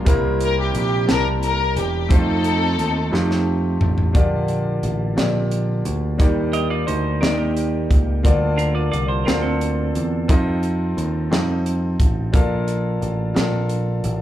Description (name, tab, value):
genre	slow gospel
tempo	59 BPM (dotted quarters)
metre	6/8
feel	straight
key	Bb major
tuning	A4 = 445 Hz
part	warm studio string section	melody	0.0-3.5 s	C4 to Bb4	-23 LUFS	left 2 dB	slapback echo
part	warm baby grand piano	accompaniment	0.0-14.2 s	C3 to A5	-23 LUFS	left 1 dB	slapback echo
part	picked electric bass	bass	0.0-14.2 s	E1 to F2	-22 LUFS	equal	none
part	crisp fusion drum kit	drums	0.1-14.2 s	hi-hat, kick drum, snare drum, toms	-20 LUFS	equal	none
part	clean electric guitar	second line	6.5-10.2 s	Bb3 to Eb5	-26 LUFS	right 6 dB	slapback echo
room	light reverb, small room ambience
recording	live gig heard through the venue's PA, club reverb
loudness	-17 LUFS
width	side -12 dB against mid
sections	0.0-4.2 A section; 4.2-14.2 B section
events	drum fill 3.1-4.2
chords	0.1 C7; 2.1 F7; 4.2 Bb6; 6.2 Ebmaj7; 8.2 Bbmaj7; 10.3 F7; 12.3 Bbmaj7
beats	| 0.06 1.08 | 2.11 3.13 | 4.15 5.17 | 6.20 7.22 | 8.24 9.27 | 10.29 11.31 | 12.34 13.36